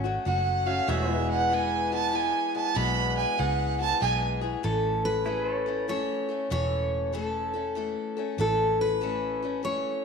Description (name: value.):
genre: honky-tonk and classic country.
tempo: 96 BPM.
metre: 3/4.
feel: swing 66% on 8ths.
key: A major.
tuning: A4 = 439 Hz.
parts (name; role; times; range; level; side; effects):
picked steel-string acoustic guitar; accompaniment; 0.0-10.0 s; E2 to A4; -31 LUFS; left 7 dB; none.
pedal steel guitar; sustained chords; 0.0-10.0 s; G#3 to C#5; -36 LUFS; left 1 dB; none.
vintage muted fingered electric bass; bass; 0.0-9.8 s; E1 to C#2; -31 LUFS; right 1 dB; none.
clear fiddle; second line; 0.3-4.3 s; E5 to B5; -27 LUFS; right 5 dB; none.
picked steel-string acoustic guitar; melody; 4.6-10.0 s; A4 to C#5; -28 LUFS; equal; none.
room: wet echo chamber reverb, RT60 1.4 s.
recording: 1960s-style stereo.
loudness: -25 LUFS.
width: side -5 dB against mid.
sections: 0.0-4.6 A section; 4.6-10.0 B section.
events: fiddle solo 0.0-4.6.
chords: 0.0 F#m; 0.9 E; 4.6 A.